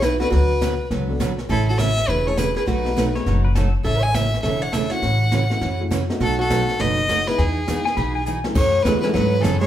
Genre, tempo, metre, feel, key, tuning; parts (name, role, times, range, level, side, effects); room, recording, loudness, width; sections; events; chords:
country, western swing; 204 BPM; 4/4; swing 62% on 8ths; A4 = 436 Hz
clear fiddle; melody; 0.0-9.7 s; G#4 to G#5; -23 LUFS; left 1 dB
archtop guitar, miked and amplified; second line; 0.0-9.7 s; E3 to E5; -28 LUFS; right 2 dB
picked steel-string acoustic guitar; accompaniment; 0.0-9.6 s; B2 to B4; -26 LUFS; right 5 dB
upright bass; bass; 0.0-9.7 s; E1 to G#2; -22 LUFS; equal
jazz brush drum kit; drums; 0.0-9.7 s; brushed snare drum, crash cymbal, hi-hat, kick drum, snare drum; -27 LUFS; equal
honky-tonk upright piano; accompaniment; 0.2-9.3 s; F#3 to A4; -29 LUFS; left 2 dB
pedal steel guitar; second line; 3.2-3.7, 7.9-8.4 s; A4 to B5; -27 LUFS; left 4 dB
moderate large studio reverb, RT60 0.9 s; band playing live in one room; -18 LUFS; side -11 dB against mid
0.0-8.6 A section; 8.6-9.7 B section
drum fill 8.3
0.3 D6; 1.5 Amaj7; 2.7 B7; 3.9 Amaj7; 5.0 F#m7/A; 6.2 B7; 7.4 Emaj7; 8.6 F#m7